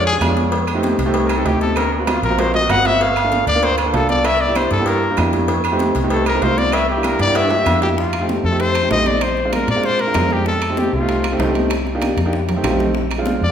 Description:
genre	Afro-Cuban jazz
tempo	193 BPM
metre	4/4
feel	straight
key	F mixolydian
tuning	A4 = 440 Hz
part	clear trumpet	melody	0.0-11.4, 13.4-13.5 s	D4 to F#5	-19 LUFS	left 2 dB	none
part	clear baby grand piano	accompaniment	0.0-13.5 s	G#3 to F5	-20 LUFS	right 2 dB	none
part	vintage muted fingered electric bass	bass	0.0-13.5 s	G1 to Bb2	-22 LUFS	equal	none
part	congas	percussion	0.1-13.5 s	none	-27 LUFS	left 1 dB	none
part	claves	percussion	0.2-13.3 s	none	-34 LUFS	right 7 dB	none
part	cowbell and bongos	percussion	0.2-13.4 s	none	-26 LUFS	left 3 dB	none
part	timbales and agogo bells	percussion	0.2-13.4 s	none	-25 LUFS	right 2 dB	none
room	wet recital hall reverb, RT60 1.3 s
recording	recorded in a church or concert hall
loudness	-15 LUFS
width	side -8 dB against mid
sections	0.0-8.0 A section; 8.0-13.5 B section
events	trumpet solo 0.0-8.0; drum fill 1.8-3.0, 7.2-8.0, 12.2-13.0; grand piano fill 12.5-13.0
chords	0.0 Bdim7 (rootless); 0.5 F7; 1.8 D7alt; 3.0 Gm7; 4.3 C7; 5.5 F7; 6.7 C7; 8.0 F7; 9.2 Bb7; 10.5 F7; 11.7 Cm7; 12.3 F7; 13.0 Bb7

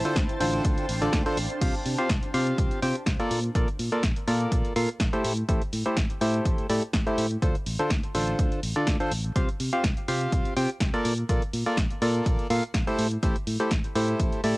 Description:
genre	piano house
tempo	124 BPM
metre	4/4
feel	swing 53% on 16ths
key	C mixolydian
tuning	A4 = 440 Hz
part	granular cloud pad	texture	0.0-1.6 s	D4 to A5	-34 LUFS	equal	built-in reverb, sidechain pumping, cassette tape
part	percussive organ stab	riff	0.1-14.6 s	D3 to G5	-27 LUFS	equal	chorus, sidechain pumping, cassette tape
part	punchy analog drum machine	drums	0.1-14.5 s	crash cymbal, hi-hat, snare drum	-32 LUFS	equal	cassette tape
part	fingered electric bass	bass	0.2-14.5 s	A1 to C3	-29 LUFS	equal	sidechain pumping
part	electronic kick drum	drums	0.2-14.3 s	none	-27 LUFS	equal	cassette tape
room	light reverb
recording	home recording on cassette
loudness	-23 LUFS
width	side -21 dB against mid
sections	0.0-1.6 A section; 1.6-14.6 B section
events	drop 0.0-1.6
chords	0.0 Dm7; 1.6 Csus4; 3.3 Bbmaj7; 5.2 Am7; 7.4 Dm7; 9.4 Csus4; 11.1 Bbmaj7; 13.0 Am7

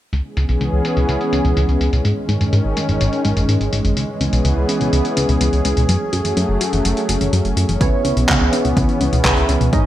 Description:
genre	italo disco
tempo	125 BPM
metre	4/4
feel	straight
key	C# minor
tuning	A4 = 440 Hz
part	warm analog pad	sustained chords	0.1-9.9 s	D#3 to G#4	-20 LUFS	equal	chorus
part	warbly dusty pluck	arpeggios	0.1-9.8 s	F#2 to F#4	-24 LUFS	left 1 dB	chorus, cassette tape, digital delay
part	chorused synth bass	bass	0.1-9.8 s	F#1 to G#2	-18 LUFS	equal	none
part	dusty soul sampler-style drum kit	drums	0.1-9.8 s	handclaps, hi-hat	-24 LUFS	left 1 dB	overdrive, low-pass filter on hats, low-pass filter on snare, low-pass filter on room, gated reverb
part	chorused polysynth	stabs	7.8-9.9 s	B3 to D#5	-20 LUFS	right 3 dB	none
part	electronic kick drum	drums	7.8-9.8 s	none	-19 LUFS	equal	overdrive
room	light reverb, digital ambience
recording	bright 1980s-style digital production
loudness	-15 LUFS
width	side -13 dB against mid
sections	0.1-9.9 A section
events	filter sweep on analog synth bass 0.1-9.9; filter sweep on synth arpeggio sound 0.1-9.9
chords	0.1 C#m7; 2.0 G#sus4; 4.0 C#m7; 5.9 F#madd9; 7.8 C#m7

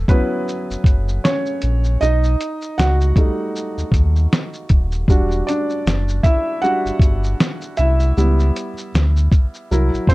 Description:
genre	lo-fi hip hop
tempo	78 BPM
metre	4/4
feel	swing 57% on 16ths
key	unclear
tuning	A4 = 440 Hz
part	felt-muted upright piano	accompaniment	0.0-10.1 s	F#3 to F#5	-21 LUFS	right 1 dB	cassette tape
part	sub bass with octave	bass	0.0-10.1 s	D#1 to D#2	-16 LUFS	equal	none
part	lo-fi sampler-style drum kit	drums	0.1-10.1 s	hi-hat, kick drum, shaker, snare drum	-16 LUFS	equal	none
room	light reverb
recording	dark, warm production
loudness	-15 LUFS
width	side -20 dB against mid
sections	0.0-10.1 A section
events	felt piano solo 0.0-10.1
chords	0.0 Dmaj9 (rootless); 2.0 B7b13; 5.1 Em9; 8.2 C#m7b5

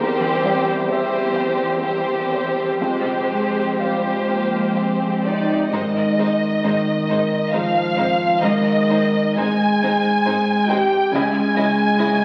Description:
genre	cinematic, emotional film score for orchestra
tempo	60-71 BPM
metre	3/4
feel	rubato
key	F dorian, Ab major from 5.7 s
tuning	A4 = 440 Hz
part	warm symphonic violin section	second line	0.0-12.1 s	Eb4 to Eb5	-27 LUFS	equal	none
part	felt-muted upright piano	accompaniment	0.0-12.2 s	Db2 to G5	-25 LUFS	equal	none
part	rich symphonic viola section	accompaniment	0.0-12.1 s	G3 to Eb4	-30 LUFS	equal	none
part	dark symphonic cello section	bass	0.0-12.1 s	E2 to Db3	-32 LUFS	equal	none
part	warm symphonic violin section	melody	5.2-12.2 s	D5 to Ab5	-23 LUFS	equal	none
part	mellow French horn section	sustained chords	5.2-12.2 s	C3 to G4	-24 LUFS	equal	none
part	rich symphonic double bass section	bass	5.7-12.1 s	Ab1 to Db2	-38 LUFS	equal	none
room	wet recital hall reverb, RT60 1.4 s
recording	very old 78 rpm record, vinyl crackle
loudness	-19 LUFS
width	mono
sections	0.0-5.7 A section; 5.7-12.2 B section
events	none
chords	0.0 C/E; 2.8 Fmadd9; 5.7 Ab; 11.1 Dbmadd9

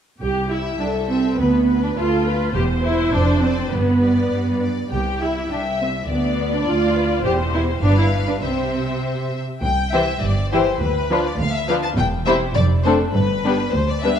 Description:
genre	quick classical-period movement for string orchestra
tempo	102 BPM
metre	2/4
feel	straight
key	C major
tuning	A4 = 439 Hz
part	rich symphonic viola section	accompaniment	0.2-14.2 s	E3 to G4	-22 LUFS	right 2 dB	none
part	rich symphonic cello section	bass	0.2-14.2 s	C2 to C3	-24 LUFS	right 2 dB	none
part	rich symphonic double bass section	bass	0.2-14.2 s	E1 to D2	-24 LUFS	right 1 dB	none
part	clear symphonic violin section	melody	0.5-14.2 s	B4 to A5	-26 LUFS	left 5 dB	none
part	warm symphonic violin section	second line	0.8-14.2 s	D4 to E5	-24 LUFS	left 4 dB	none
room	moderate scoring stage reverb, RT60 1.9 s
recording	dark, warm production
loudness	-17 LUFS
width	side -8 dB against mid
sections	0.2-9.6 A section; 9.6-14.2 A section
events	none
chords	0.2 C; 1.4 Bdim/D; 2.5 C/E; 3.1 Dm7/F; 3.7 G; 4.9 C; 6.1 Bdim/D; 7.2 C/E; 7.8 G7; 8.4 C; 10.8 Bdim/D; 12.0 C/E; 12.6 Dm7/F; 13.1 G

